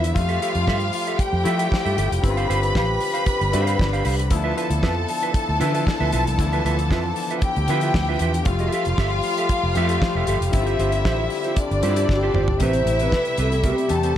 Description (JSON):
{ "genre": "disco", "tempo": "116 BPM", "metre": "4/4", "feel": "straight", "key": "D dorian", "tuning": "A4 = 439 Hz", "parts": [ { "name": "warm studio violin section", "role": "second line", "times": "0.0-14.2 s", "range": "D4 to B5", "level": "-25 LUFS", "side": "left 1 dB", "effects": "none" }, { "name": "clear grand piano", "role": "accompaniment", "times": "0.0-14.2 s", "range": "B2 to G4", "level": "-28 LUFS", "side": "left 7 dB", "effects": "none" }, { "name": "mellow electric guitar", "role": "accompaniment", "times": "0.0-14.2 s", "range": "C4 to F5", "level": "-28 LUFS", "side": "right 8 dB", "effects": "none" }, { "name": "warm French horn section", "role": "sustained chords", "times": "0.0-14.2 s", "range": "D3 to G4", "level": "-30 LUFS", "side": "left 3 dB", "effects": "none" }, { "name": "vintage muted fingered electric bass", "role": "bass", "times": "0.0-14.1 s", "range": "F1 to F3", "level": "-23 LUFS", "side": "equal", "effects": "none" }, { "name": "damped 70s drum kit", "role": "drums", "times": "0.0-14.2 s", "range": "hi-hat, kick drum, snare drum, toms", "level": "-25 LUFS", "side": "equal", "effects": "none" }, { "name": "mellow wooden-headed alto flute", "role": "melody", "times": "12.1-14.2 s", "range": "G4 to C5", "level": "-23 LUFS", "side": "left 1 dB", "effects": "none" } ], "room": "light reverb, small room ambience", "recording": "none", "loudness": "-18 LUFS", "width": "side -11 dB against mid", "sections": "0.0-12.6 A section; 12.6-14.2 B section", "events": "drum fill 12.1-12.6", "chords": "0.2 Fmaj9; 2.2 G7sus4; 4.3 Dm69; 8.5 Fmaj9; 10.5 G7sus4; 12.6 Am9" }